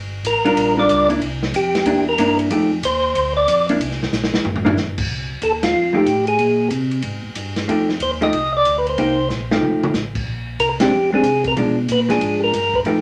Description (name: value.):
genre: soul jazz organ trio.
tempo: 186 BPM.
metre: 4/4.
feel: swing 64% on 8ths.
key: F mixolydian.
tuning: A4 = 440 Hz.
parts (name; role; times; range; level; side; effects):
mellow tonewheel organ; bass; 0.0-13.0 s; F1 to C3; -28 LUFS; equal; chorus vibrato, slow rotary speaker.
swinging big-band drum kit; drums; 0.2-12.9 s; crash cymbal, hi-hat, kick drum, ride cymbal, snare drum, toms; -28 LUFS; equal; none.
percussive tonewheel organ; melody; 0.3-12.8 s; F4 to Eb5; -20 LUFS; equal; slow rotary speaker.
vintage hollow-body jazz guitar; accompaniment; 0.4-13.0 s; F3 to Bb4; -21 LUFS; equal; none.
room: wet small room reverb, RT60 0.6 s.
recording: none.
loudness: -18 LUFS.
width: mono.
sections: 0.0-5.1 A section; 5.1-13.0 B section.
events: tonewheel organ solo 0.0-5.1; drum fill 4.1-4.8, 9.3-9.9; band accent 5.6, 10.8.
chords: 0.0 Gm7; 1.2 C9; 2.5 F9; 3.2 Dmadd9; 3.8 C7(no3); 5.1 F9; 6.4 Bbsus2; 7.7 F9; 9.0 Cm7; 9.6 F9; 10.3 Bb9; 11.6 Bdim7.